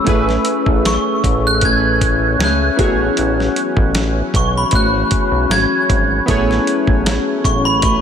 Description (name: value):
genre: indie pop, bedroom pop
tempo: 77 BPM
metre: 4/4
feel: swing 55% on 16ths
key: A major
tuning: A4 = 440 Hz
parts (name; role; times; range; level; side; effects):
- fingerpicked steel-string acoustic guitar; accompaniment; 0.0-8.0 s; A3 to B4; -21 LUFS; left 5 dB; lush chorus, vibrato effect
- warm analog keys; accompaniment; 0.0-8.0 s; A3 to C#5; -22 LUFS; right 4 dB; chorus, cassette tape
- warm analog pad; sustained chords; 0.0-8.0 s; E3 to G#4; -24 LUFS; left 3 dB; chorus
- chorused synth bass; bass; 0.1-8.0 s; G#1 to C#2; -19 LUFS; equal; none
- dusty soul sampler-style drum kit; drums; 0.1-8.0 s; hi-hat, kick drum, snare drum; -19 LUFS; equal; none
- glockenspiel with brass mallets; melody; 0.9-8.0 s; B5 to G#6; -18 LUFS; right 1 dB; ensemble chorus, ping-pong delay
room: light reverb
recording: none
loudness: -13 LUFS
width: side -8 dB against mid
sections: 0.0-8.0 A section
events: none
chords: 0.1 Amaj9; 2.8 E69/A; 6.3 Amaj9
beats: | 0.07 0.85 1.62 2.40 | 3.18 3.95 4.73 5.50 | 6.28 7.05 7.83